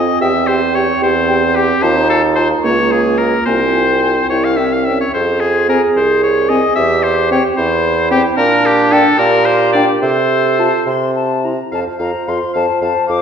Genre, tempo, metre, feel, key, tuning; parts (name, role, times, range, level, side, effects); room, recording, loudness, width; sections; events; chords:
quick classical-period movement for wind quintet; 73 BPM (dotted quarters); 6/8; straight; F major from 8.4 s; A4 = 440 Hz
bright oboe; second line; 0.0-13.2 s; G4 to F5; -16 LUFS; left 4 dB
mellow French horn; accompaniment; 0.0-13.2 s; C4 to G4; -21 LUFS; equal
warm clarinet; accompaniment; 0.0-13.2 s; Bb3 to C5; -18 LUFS; right 4 dB
warm bassoon; bass; 0.0-13.2 s; C2 to C3; -16 LUFS; right 2 dB
silver concert flute; melody; 0.2-13.2 s; G5 to D6; -22 LUFS; left 6 dB
wet recital hall reverb, RT60 1.4 s; dark, warm production; -11 LUFS; side -7 dB against mid
0.0-11.7 A section; 11.7-13.2 B section
0.2 C/E; 1.8 F7/Eb; 2.6 Bbm/Db; 3.5 F5/C; 4.3 C; 5.1 Fm; 6.8 C/E; 8.4 Gm/Bb; 10.0 F/C (rootless); 10.9 N.C.; 11.7 F5